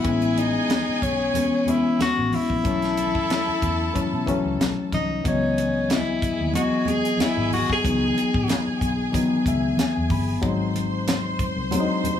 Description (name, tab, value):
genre	lush 1970s-style soul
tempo	92 BPM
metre	4/4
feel	swing 54% on 16ths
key	unclear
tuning	A4 = 440 Hz
part	breathy tenor saxophone	melody	0.0-8.6 s	C#4 to G#4	-25 LUFS	left 2 dB	plate reverb, tape echo
part	warm studio violin section	second line	0.0-12.2 s	G#4 to B#5	-31 LUFS	right 1 dB	tape echo
part	barky reed electric piano	accompaniment	0.0-12.2 s	D#3 to B5	-24 LUFS	left 3 dB	overdrive
part	vintage muted fingered electric bass	bass	0.0-11.7 s	G1 to B2	-29 LUFS	left 1 dB	none
part	tight funk drum kit	drums	0.0-12.2 s	hi-hat, kick drum, snare drum	-27 LUFS	equal	none
part	congas	percussion	0.0-12.2 s	none	-33 LUFS	right 3 dB	none
room	moderate studio reverb, RT60 0.6 s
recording	small room ambience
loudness	-20 LUFS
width	side -9 dB against mid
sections	0.0-5.3 A section; 5.3-12.2 B section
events	reed electric piano fill 9.1-10.4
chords	0.1 Amaj7; 2.7 B7sus4; 5.3 C#m11; 10.4 G#7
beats	| 0.05 0.70 1.35 2.00 | 2.65 3.30 3.95 4.60 | 5.25 5.90 6.55 7.20 | 7.85 8.49 9.14 9.79 | 10.44 11.08 11.73